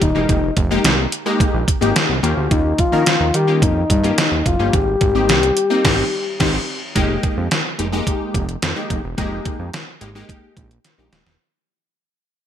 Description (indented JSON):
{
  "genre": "early-eighties boogie funk",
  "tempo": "108 BPM",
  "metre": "4/4",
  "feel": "straight",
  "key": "unclear",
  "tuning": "A4 = 440 Hz",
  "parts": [
    { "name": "soft octave-layered synth lead", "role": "melody", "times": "0.0-6.7 s", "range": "Eb4 to G4", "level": "-19 LUFS", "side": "left 4 dB", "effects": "chorus" },
    { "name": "fat analog bass", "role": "bass", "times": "0.0-11.4 s", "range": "Eb1 to Eb3", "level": "-21 LUFS", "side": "right 1 dB", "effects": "none" },
    { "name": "detuned 8-bit digital drum machine", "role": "drums", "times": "0.0-11.4 s", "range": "crash cymbal, hi-hat, kick drum, snare drum", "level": "-19 LUFS", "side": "right 1 dB", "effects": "gated reverb" },
    { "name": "funky polysynth comp", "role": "accompaniment", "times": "0.1-11.2 s", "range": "Ab3 to Bb4", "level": "-22 LUFS", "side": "left 2 dB", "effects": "chorus" }
  ],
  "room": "moderate plate reverb, RT60 1.6 s, digital ambience",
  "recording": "bright 1980s-style digital production",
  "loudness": "-15 LUFS",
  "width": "side -9 dB against mid",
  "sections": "0.0-7.0 A section; 7.0-11.4 B section",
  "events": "band accent 5.8-7.0; fade-out 7.0-11.4; drum fill 10.8-11.4",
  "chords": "0.0 Fm11; 2.2 Eb9; 4.7 Abmaj7; 7.0 Fm11",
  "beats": "| 0.29 0.85 1.40 1.96 | 2.51 3.07 3.62 4.18 | 4.74 5.29 5.85 6.40 | 6.96 7.51 8.07 8.62 | 9.18 9.74 10.29 10.85"
}